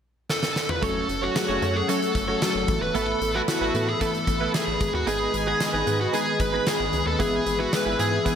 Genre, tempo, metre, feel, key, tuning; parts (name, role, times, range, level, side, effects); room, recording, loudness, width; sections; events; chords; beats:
1980s-style pop; 113 BPM; 4/4; straight; F# dorian; A4 = 440 Hz
dark smooth lead guitar; melody; 0.3-8.4 s; F#4 to B4; -26 LUFS; equal; overdrive, shimmer reverb
huge arena drum kit; drums; 0.3-8.4 s; hi-hat, kick drum, snare drum, toms; -29 LUFS; right 1 dB
glassy digital keys; accompaniment; 0.8-8.4 s; D#3 to A4; -29 LUFS; left 4 dB; chorus, shimmer reverb
lush unison pad; sustained chords; 0.8-8.4 s; G#4 to C#6; -31 LUFS; equal; chorus, shimmer reverb
twelve-string electric guitar; riff; 0.8-8.4 s; A3 to C#5; -30 LUFS; right 6 dB; analog chorus, shimmer reverb
rubbery square bass; bass; 0.8-8.2 s; E1 to A2; -31 LUFS; equal
moderate lush hall reverb, RT60 2.1 s; faint mains hum; -22 LUFS; side -8 dB against mid
0.8-8.4 A section
drum fill 0.3-0.8
0.0 N.C.; 0.8 F#m; 2.7 Asus2; 4.8 G#m; 7.2 E/G#
0.29 | 0.83 1.36 1.89 2.42 | 2.95 3.48 4.01 4.54 | 5.07 5.60 6.13 6.67 | 7.20 7.73 8.26